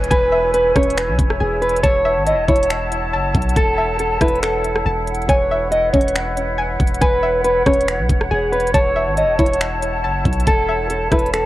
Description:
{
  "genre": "hip hop, atmospheric cloud-rap",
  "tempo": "139 BPM",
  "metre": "4/4",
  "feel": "half-time",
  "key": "E major",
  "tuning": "A4 = 440 Hz",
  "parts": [
    { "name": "bright large flute ensemble", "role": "sustained chords", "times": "0.0-11.5 s", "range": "E4 to A5", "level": "-24 LUFS", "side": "left 1 dB", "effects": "sidechain pumping, cassette tape, plate reverb" },
    { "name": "string-like resonator pluck", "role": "arpeggios", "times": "0.0-11.5 s", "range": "C#4 to A5", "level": "-25 LUFS", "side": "left 2 dB", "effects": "chorus, cassette tape, analog delay, plate reverb" },
    { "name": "long sustained 808-style bass", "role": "bass", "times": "0.0-11.5 s", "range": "E1 to B1", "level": "-24 LUFS", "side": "equal", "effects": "none" },
    { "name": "trap drum kit", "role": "drums", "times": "0.0-11.4 s", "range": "finger snaps, hi-hat, kick drum, rim click", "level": "-19 LUFS", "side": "equal", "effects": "none" },
    { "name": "downlifter", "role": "sound effects", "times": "0.0-1.8 s", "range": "none", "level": "-40 LUFS", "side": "equal", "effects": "none" },
    { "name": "mellow electric guitar", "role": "melody", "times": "0.1-11.5 s", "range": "G#4 to D#5", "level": "-18 LUFS", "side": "equal", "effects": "spring reverb, cassette tape, analog delay, plate reverb" }
  ],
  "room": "light reverb",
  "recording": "home recording on cassette",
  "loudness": "-15 LUFS",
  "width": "side -16 dB against mid",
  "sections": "0.0-11.5 A section",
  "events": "none",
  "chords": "0.0 E6; 1.8 F#m7/E; 5.3 E6; 8.7 F#m7/E"
}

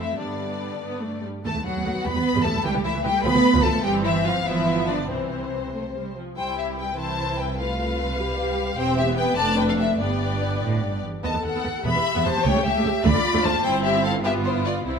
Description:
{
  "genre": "quick classical-period movement for string orchestra",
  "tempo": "92-102 BPM (dotted quarters)",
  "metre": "6/8",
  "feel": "rubato",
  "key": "C major",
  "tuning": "A4 = 444 Hz",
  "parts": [
    { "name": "warm symphonic violin section", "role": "melody", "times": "0.0-15.0 s", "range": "C5 to B5", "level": "-26 LUFS", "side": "left 3 dB", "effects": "none" },
    { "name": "warm symphonic violin section", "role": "second line", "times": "0.0-15.0 s", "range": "C4 to E5", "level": "-28 LUFS", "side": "left 4 dB", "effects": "none" },
    { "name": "rich symphonic viola section", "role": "accompaniment", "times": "0.0-15.0 s", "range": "E3 to A4", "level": "-27 LUFS", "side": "right 1 dB", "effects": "none" },
    { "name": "dark symphonic double bass section", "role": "bass", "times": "0.0-15.0 s", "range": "E1 to G2", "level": "-29 LUFS", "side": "right 3 dB", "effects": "none" },
    { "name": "rich symphonic cello section", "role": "bass", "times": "0.0-15.0 s", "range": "C2 to B3", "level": "-28 LUFS", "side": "right 4 dB", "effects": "none" }
  ],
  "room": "moderate scoring stage reverb, RT60 1.6 s",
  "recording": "none",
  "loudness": "-20 LUFS",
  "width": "side -6 dB against mid",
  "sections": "0.0-6.4 A section; 6.4-15.0 A section",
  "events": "none",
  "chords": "0.2 G; 1.4 B7/D#; 2.1 Em; 2.6 A7/C#; 3.2 Dm; 3.8 C/G; 4.5 G7; 5.1 C; 7.6 G7/C; 8.8 C/E; 9.4 Dm/F; 10.0 G; 11.2 B7/D#; 11.9 Em; 12.5 A7/C#; 13.0 Dm; 13.6 C/G; 14.2 G7"
}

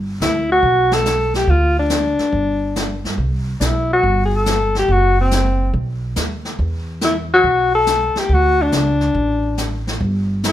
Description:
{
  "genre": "jazz, small-group swing and bop",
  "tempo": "141 BPM",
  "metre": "4/4",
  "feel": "swing 67% on 8ths",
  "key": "unclear",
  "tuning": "A4 = 437 Hz",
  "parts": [
    { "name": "upright bass", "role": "bass", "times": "0.0-10.5 s", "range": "F#1 to G2", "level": "-20 LUFS", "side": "right 1 dB", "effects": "none" },
    { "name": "breathy alto saxophone", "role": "melody", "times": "0.2-10.5 s", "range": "C4 to A4", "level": "-16 LUFS", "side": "left 2 dB", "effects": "plate reverb" },
    { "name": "jazz brush drum kit", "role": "drums", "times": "0.2-10.5 s", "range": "brushed snare drum, hi-hat, kick drum, snare drum", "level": "-24 LUFS", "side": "equal", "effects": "none" }
  ],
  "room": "light reverb",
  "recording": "none",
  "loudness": "-15 LUFS",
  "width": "side -12 dB against mid",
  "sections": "0.0-10.5 A section",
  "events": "none",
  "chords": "0.0 Gmaj7 (rootless); 1.5 Dm; 2.3 G5; 3.2 C5; 4.9 N.C.; 5.7 B; 6.6 Esus2; 8.3 D5; 10.0 N.C."
}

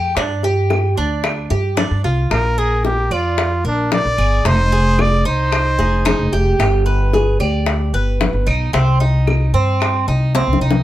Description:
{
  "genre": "latin, Cuban son and guajira",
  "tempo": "112 BPM",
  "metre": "4/4",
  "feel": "straight",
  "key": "unclear",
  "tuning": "A4 = 440 Hz",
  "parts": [
    { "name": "nylon-string guitar", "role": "second line", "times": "0.0-0.1, 5.8-8.4 s", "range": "Eb4 to Ab4", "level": "-23 LUFS", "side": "left 2 dB", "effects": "none" },
    { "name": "Cuban tres", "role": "arpeggios", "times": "0.0-10.8 s", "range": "C4 to D5", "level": "-22 LUFS", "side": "right 3 dB", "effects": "none" },
    { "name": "upright bass", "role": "bass", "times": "0.0-10.8 s", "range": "F1 to G2", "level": "-17 LUFS", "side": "equal", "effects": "none" },
    { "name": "bongos", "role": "percussion", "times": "0.2-10.8 s", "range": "none", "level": "-21 LUFS", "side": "left 5 dB", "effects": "none" },
    { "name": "claves", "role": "percussion", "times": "0.7-10.1 s", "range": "none", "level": "-28 LUFS", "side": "right 2 dB", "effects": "none" },
    { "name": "breathy trumpet", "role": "melody", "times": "2.3-6.3 s", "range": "D4 to D5", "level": "-18 LUFS", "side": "equal", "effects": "none" }
  ],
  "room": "light reverb",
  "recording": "none",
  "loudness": "-14 LUFS",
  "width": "side -14 dB against mid",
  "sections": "0.0-10.8 A section",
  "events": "drum fill 10.3-10.8",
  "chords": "0.2 G5; 2.3 Bb; 4.5 Fm7; 6.6 G; 8.7 Cm"
}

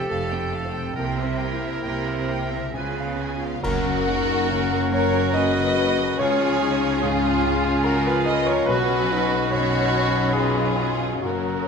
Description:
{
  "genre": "cinematic, emotional film score for orchestra",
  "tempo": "66-73 BPM",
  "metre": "3/4",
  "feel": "rubato",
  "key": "F# major from 3.6 s",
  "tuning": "A4 = 440 Hz",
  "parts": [
    { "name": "warm symphonic violin section", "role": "melody", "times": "0.0-11.7 s", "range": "C#4 to G#5", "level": "-28 LUFS", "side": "left 2 dB", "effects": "none" },
    { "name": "bright oboe", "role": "second line", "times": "0.0-11.7 s", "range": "E#4 to B4", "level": "-31 LUFS", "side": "right 2 dB", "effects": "none" },
    { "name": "clear clarinet", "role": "second line", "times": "0.0-11.7 s", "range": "C#4 to G4", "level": "-30 LUFS", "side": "left 6 dB", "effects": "none" },
    { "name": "warm symphonic violin section", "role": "second line", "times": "0.0-11.7 s", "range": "E#4 to D#5", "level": "-30 LUFS", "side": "right 1 dB", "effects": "none" },
    { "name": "dark baby grand piano", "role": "accompaniment", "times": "0.0-11.7 s", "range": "B1 to G5", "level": "-28 LUFS", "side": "equal", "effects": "none" },
    { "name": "warm studio viola section", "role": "accompaniment", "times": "0.0-11.7 s", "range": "E#3 to A#4", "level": "-31 LUFS", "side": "equal", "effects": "none" },
    { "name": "dark French horn section", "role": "sustained chords", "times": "0.0-11.7 s", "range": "A3 to G4", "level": "-29 LUFS", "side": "left 5 dB", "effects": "none" },
    { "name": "concert harp", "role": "arpeggios", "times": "0.0-11.7 s", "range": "F#2 to B4", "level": "-34 LUFS", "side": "left 8 dB", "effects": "none" },
    { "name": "clear symphonic cello section", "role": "bass", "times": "0.1-11.7 s", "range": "F2 to C#3", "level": "-30 LUFS", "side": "right 4 dB", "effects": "none" },
    { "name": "warm symphonic double bass section", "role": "bass", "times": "0.1-11.7 s", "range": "F1 to C#2", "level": "-31 LUFS", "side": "right 5 dB", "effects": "none" },
    { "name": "concert flute", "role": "second line", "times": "3.6-11.7 s", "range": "F#5 to B5", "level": "-31 LUFS", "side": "right 1 dB", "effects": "none" },
    { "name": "clash cymbals and concert bass drum", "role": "percussion", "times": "3.6-5.3 s", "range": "none", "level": "-34 LUFS", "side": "right 2 dB", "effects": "none" }
  ],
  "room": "wet scoring stage reverb, RT60 1.6 s",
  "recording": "none",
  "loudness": "-20 LUFS",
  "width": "side -6 dB against mid",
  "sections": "0.0-3.6 A section; 3.6-11.7 B section",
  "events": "band accent 3.6-4.5",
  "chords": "0.0 Fadd9; 1.0 C7; 2.7 C#7; 3.6 F#; 6.2 C#; 8.7 Bsus2"
}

